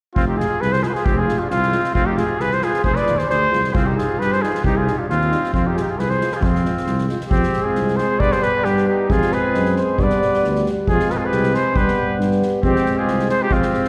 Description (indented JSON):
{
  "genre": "balkan folk, Balkan brass band",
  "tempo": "135 BPM",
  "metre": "2/4",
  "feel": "straight",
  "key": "F dorian sharp4",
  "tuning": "A4 = 440 Hz",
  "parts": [
    { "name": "mellow cornet", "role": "melody", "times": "0.1-13.9 s", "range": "F4 to D5", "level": "-23 LUFS", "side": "equal", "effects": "none" },
    { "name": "warm trumpet", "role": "second line", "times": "0.2-13.9 s", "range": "C4 to B4", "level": "-29 LUFS", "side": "equal", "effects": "none" },
    { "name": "dark tuba", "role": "bass", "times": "0.2-13.6 s", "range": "F1 to G2", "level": "-25 LUFS", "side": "equal", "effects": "none" },
    { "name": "soft-mallet drum kit", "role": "percussion", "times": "0.2-13.9 s", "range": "kick drum, snare drum", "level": "-27 LUFS", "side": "equal", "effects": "none" },
    { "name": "mellow euphonium", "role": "accompaniment", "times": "0.4-13.9 s", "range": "G3 to Ab3", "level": "-29 LUFS", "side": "equal", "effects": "none" },
    { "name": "warm euphonium", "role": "accompaniment", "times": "0.4-13.9 s", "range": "B3 to F4", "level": "-29 LUFS", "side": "equal", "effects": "none" }
  ],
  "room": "wet concert hall reverb, RT60 2.0 s",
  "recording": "heard from further back in the room",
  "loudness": "-19 LUFS",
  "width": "mono",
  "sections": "0.2-7.3 A section; 7.3-13.9 B section",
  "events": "none",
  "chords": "0.2 Fm; 3.7 Cm; 5.5 Fm; 8.2 G; 9.1 Fm; 10.0 G; 10.9 Fm; 11.7 G; 12.6 Fm"
}